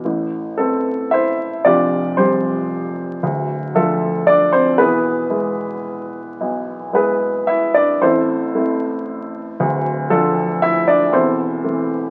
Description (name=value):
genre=classical, lyrical solo piano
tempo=114 BPM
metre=3/4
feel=uneven beats, rubato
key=A minor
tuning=A4 = 440 Hz
part: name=dark upright piano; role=solo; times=0.0-12.1 s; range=D1 to E5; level=-18 LUFS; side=equal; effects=none
room=moderate studio reverb, RT60 0.8 s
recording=very old 78 rpm record, vinyl crackle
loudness=-18 LUFS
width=mono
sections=0.0-12.1 A section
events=none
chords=0.0 Amadd9; 1.7 Fsus2; 3.2 Dmadd9; 4.8 E; 8.0 Am; 9.6 Dm; 11.1 Am/E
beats=| 0.04 0.59 1.13 | 1.66 2.18 2.71 | 3.23 3.75 4.27 | 4.79 5.31 5.86 | 6.41 6.95 7.48 | 8.02 8.55 9.08 | 9.59 10.11 10.62 | 11.13 11.64